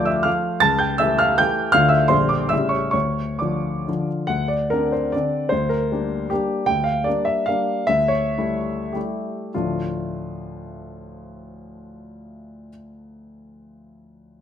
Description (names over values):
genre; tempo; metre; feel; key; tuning
classical, romantic triple-time dance for piano with dotted rhythms; 90-178 BPM; 3/4; rubato; D minor; A4 = 440 Hz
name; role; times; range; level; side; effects
clear grand piano; solo; 0.0-14.4 s; A1 to A6; -19 LUFS; equal; none
room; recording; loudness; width
moderate large studio reverb, RT60 1.1 s; minimal, uncompressed stereo recording; -18 LUFS; side -8 dB against mid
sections
0.0-4.3 A section; 4.3-9.6 B section; 9.6-12.8 C section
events
slowing down 6.1-9.6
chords
0.0 Dm; 0.6 A7/C#; 1.8 Dm; 2.1 Gm/Bb; 2.5 A7; 2.9 Dm; 4.3 Daug7; 5.5 Gm/D; 7.9 A7/D; 9.6 Dm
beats
0.27 | 0.63 1.01 1.40 | 1.75 2.12 2.52 | 2.95 3.41 3.88 | 4.30 4.73 5.14 | 5.52 5.91 6.31 | 6.68 7.06 7.47 | 7.89 8.38 8.95 | 9.56 10.11 10.68 | 11.21 11.76 12.32